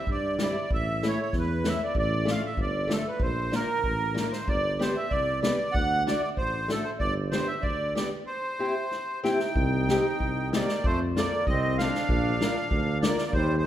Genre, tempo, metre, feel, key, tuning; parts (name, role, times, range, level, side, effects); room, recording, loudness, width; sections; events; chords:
alpine folk, alpine dance band; 95 BPM; 2/4; rubato; C major, C minor from 9.6 s; A4 = 440 Hz
accordion; melody; 0.0-13.7 s; A4 to G5; -29 LUFS; right 1 dB; light tremolo tuning
mellow tuba; bass; 0.1-13.7 s; G1 to G2; -30 LUFS; equal
unplugged drum kit; drums; 0.1-13.5 s; kick drum, snare drum; -31 LUFS; equal
picked old ladder-braced acoustic guitar; accompaniment; 0.4-13.2 s; G3 to Bb4; -32 LUFS; left 2 dB
mellow trumpet; second line; 9.3-13.7 s; G3 to Eb4; -34 LUFS; right 2 dB
wet recital hall reverb, RT60 1.3 s; recorded in a church or concert hall; -24 LUFS; side -11 dB against mid
0.0-9.6 A section; 9.6-13.7 B section
drum fill 8.9-9.6
0.0 C; 0.7 A; 2.0 Dm/A; 3.2 Bb; 4.5 G; 5.8 D; 7.0 G; 8.3 C; 9.6 Cm; 10.8 F; 12.1 Bb